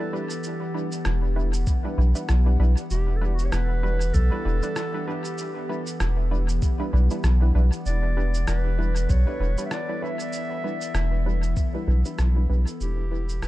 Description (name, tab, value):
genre	ambient dub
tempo	97 BPM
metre	4/4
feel	swing 57% on 16ths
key	E minor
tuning	A4 = 440 Hz
part	mellow clarinet	melody	0.0-13.5 s	F#4 to E5	-34 LUFS	equal	dub echo
part	warbly tape-like pad	sustained chords	0.0-13.5 s	E3 to F#5	-33 LUFS	left 2 dB	chorus, built-in reverb
part	filtered dub chord stab	stabs	0.0-13.3 s	G3 to B4	-33 LUFS	right 2 dB	chorus, dub echo
part	electronic cabasa and rim click	drums	0.3-13.5 s	none	-36 LUFS	equal	overdrive, dub echo
part	round analog bass	bass	1.1-13.5 s	E1 to B1	-21 LUFS	equal	none
part	electronic kick drum	drums	1.7-11.7 s	none	-24 LUFS	equal	overdrive
room	digital ambience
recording	dark, warm production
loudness	-22 LUFS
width	side -16 dB against mid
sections	0.0-13.5 A section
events	fade-out 11.2-13.5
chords	0.0 Em7